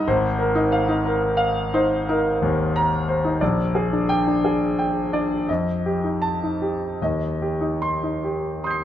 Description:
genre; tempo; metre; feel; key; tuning
classical, impressionist solo piano; 72-93 BPM; 5/4; rubato; unclear; A4 = 445 Hz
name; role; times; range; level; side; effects
clear concert grand piano; solo; 0.0-8.8 s; Ab1 to C7; -20 LUFS; equal; none
room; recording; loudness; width
moderate recital hall reverb, RT60 1.7 s; none; -20 LUFS; side -11 dB against mid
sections
0.0-8.8 A section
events
none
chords
0.1 Ab69; 3.4 Bb6; 5.5 F9; 7.0 Eb6

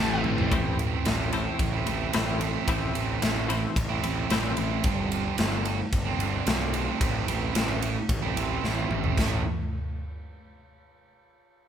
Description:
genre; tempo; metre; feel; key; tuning
quiet-loud alternative rock; 111 BPM; 4/4; straight; A minor; A4 = 440 Hz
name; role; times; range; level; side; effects
scooped high-gain guitar; riff; 0.0-0.5 s; A2 to A3; -34 LUFS; left 1 dB; distortion
thick fuzz guitar; riff; 0.0-0.5 s; A2 to E4; -31 LUFS; left 8 dB; distortion
thick fuzz guitar; riff; 0.0-9.4 s; G2 to E4; -30 LUFS; right 8 dB; distortion
fuzz picked electric bass; bass; 0.0-9.4 s; G1 to B1; -30 LUFS; equal; overdrive
big rock drum kit; drums; 0.2-9.3 s; crash cymbal, kick drum, ride cymbal, snare drum, toms; -28 LUFS; left 1 dB; none
twelve-string electric guitar; arpeggios; 0.5-4.8 s; A2 to C4; -33 LUFS; left 6 dB; tremolo
room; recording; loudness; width
moderate large studio reverb, RT60 1.1 s; band playing live in one room; -24 LUFS; side -9 dB against mid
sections
0.5-9.2 A section; 9.2-11.3 B section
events
drum fill 0.0-0.5, 8.6-9.2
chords
0.0 Am; 4.8 Gsus4; 7.0 Am; 9.2 A5

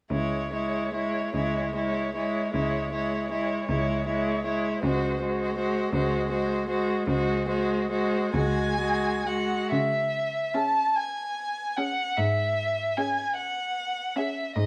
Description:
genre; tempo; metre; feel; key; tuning
classical, slow romantic movement for string quartet; 50 BPM (dotted quarters); 12/8; uneven beats, rubato; C# minor; A4 = 440 Hz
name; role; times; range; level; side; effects
clear violin; melody; 0.1-14.7 s; B#4 to A5; -32 LUFS; equal; none
rich violin; second line; 0.1-14.5 s; E4 to G#4; -32 LUFS; equal; none
rich viola; accompaniment; 0.1-14.5 s; G#3 to C#4; -33 LUFS; equal; none
clear cello; bass; 0.1-14.7 s; C#2 to C#3; -33 LUFS; equal; none
room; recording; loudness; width
moderate stone room reverb, RT60 1.5 s; worn, warbling old tape, cassette tape, warbly pitch drift; -27 LUFS; mono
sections
0.1-9.7 A section; 9.7-14.7 B section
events
none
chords
0.1 C#m

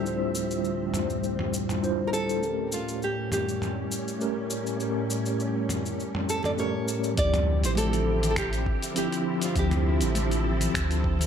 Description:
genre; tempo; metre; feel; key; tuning
sunset chillout; 101 BPM; 4/4; swing 54% on 16ths; D minor; A4 = 440 Hz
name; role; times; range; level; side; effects
nylon-string guitar; melody; 0.0-10.7 s; F4 to D5; -31 LUFS; equal; digital delay
mellow tine electric piano; accompaniment; 0.0-11.3 s; F3 to C5; -30 LUFS; moving between left 5 dB and right 4 dB; medium stereo tremolo, auto-pan, digital delay
soft string machine; sustained chords; 0.0-11.3 s; D2 to E5; -32 LUFS; equal; ensemble chorus
dusty soul sampler-style drum kit; drums; 0.1-11.3 s; finger snaps, hi-hat, shaker, toms; -32 LUFS; equal; none
round analog bass; bass; 7.2-11.3 s; A1 to D2; -26 LUFS; equal; none
electronic kick drum; drums; 7.2-11.2 s; none; -31 LUFS; equal; none
congas; percussion; 7.8-11.3 s; none; -34 LUFS; left 4 dB; none
room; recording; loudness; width
light reverb, digital ambience; none; -24 LUFS; side -8 dB against mid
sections
0.0-7.2 A section; 7.2-11.3 B section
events
none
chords
0.0 Dm11; 2.4 A7b9; 7.2 Dm11

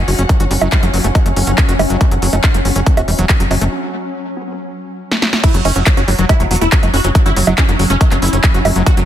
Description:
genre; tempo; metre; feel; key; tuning
psychedelic trance; 140 BPM; 4/4; straight; unclear; A4 = 437 Hz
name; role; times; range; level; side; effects
vowel-sweep wobble bass; second line; 0.0-7.8 s; F#3 to F#4; -31 LUFS; left 5 dB; none
swarming drone; sustained chords; 0.0-9.1 s; F#3 to C#4; -23 LUFS; left 1 dB; built-in reverb, sidechain pumping
tight sequencer bass; bass; 0.0-9.0 s; E1 to G1; -16 LUFS; equal; none
dark chamber string section; texture; 0.0-3.7 s; C#4 to F#5; -30 LUFS; right 1 dB; none
overdriven acid bass; riff; 0.1-9.0 s; E3 to F#4; -22 LUFS; moving between left 4 dB and right 3 dB; distortion, auto-pan, sidechain pumping, digital delay
big-room dance drum kit; drums; 0.1-9.1 s; bongos, crash cymbal, handclaps, hi-hat, snare drum; -18 LUFS; right 2 dB; none
electronic kick drum; drums; 0.3-9.0 s; none; -13 LUFS; equal; none
supersaw stab; melody; 5.4-9.0 s; F#3 to F#4; -19 LUFS; right 1 dB; phaser, sidechain pumping, digital delay
room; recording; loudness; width
digital ambience; dense, heavily limited modern master; -11 LUFS; side -11 dB against mid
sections
0.0-5.4 A section; 5.4-9.1 B section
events
break 3.7-5.4; drum fill 5.1-5.4; drop 5.4-9.1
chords
0.0 F#5

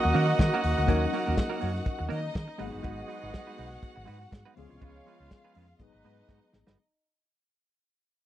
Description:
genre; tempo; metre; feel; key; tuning
disco; 122 BPM; 4/4; swing 56% on 16ths; G# dorian; A4 = 440 Hz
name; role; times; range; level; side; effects
rich studio violin section; second line; 0.0-6.8 s; D#4 to F#5; -34 LUFS; left 1 dB; none
mellow tine electric piano; accompaniment; 0.0-6.8 s; E#3 to A#4; -38 LUFS; left 7 dB; medium stereo tremolo
semi-hollow electric guitar; accompaniment; 0.0-6.8 s; G#3 to B4; -36 LUFS; right 9 dB; none
mellow horn section; stabs; 0.0-6.5 s; G#3 to D#5; -33 LUFS; right 4 dB; none
hollow-body short-scale fingered electric bass; bass; 0.0-6.7 s; G1 to D#3; -30 LUFS; equal; none
warm soul drum kit; drums; 0.1-6.8 s; hi-hat, kick drum, snare drum; -28 LUFS; equal; none
room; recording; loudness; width
little or no reverb; dry, close 1970s-style studio recording; -26 LUFS; side -12 dB against mid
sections
0.0-6.8 A section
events
fade-out 0.0-6.8; drum fill 6.3-6.8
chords
0.0 D#m7; 2.6 G#m7; 4.6 C#7; 5.8 G#m7

